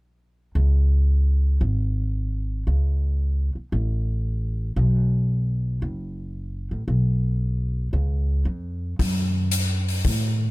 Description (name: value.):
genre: jazz, big band swing.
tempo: 114 BPM.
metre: 4/4.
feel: swing 69% on 8ths.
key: unclear.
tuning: A4 = 441 Hz.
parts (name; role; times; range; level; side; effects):
upright bass; bass; 0.6-10.5 s; F#1 to A2; -21 LUFS; equal; none.
swinging big-band drum kit; drums; 9.0-10.2 s; hi-hat, kick drum; -25 LUFS; left 2 dB; none.
room: little or no reverb.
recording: close, detailed microphones, faint mains hum.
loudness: -21 LUFS.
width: side -21 dB against mid.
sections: 0.6-9.0 A section; 9.0-10.5 B section.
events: none.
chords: none.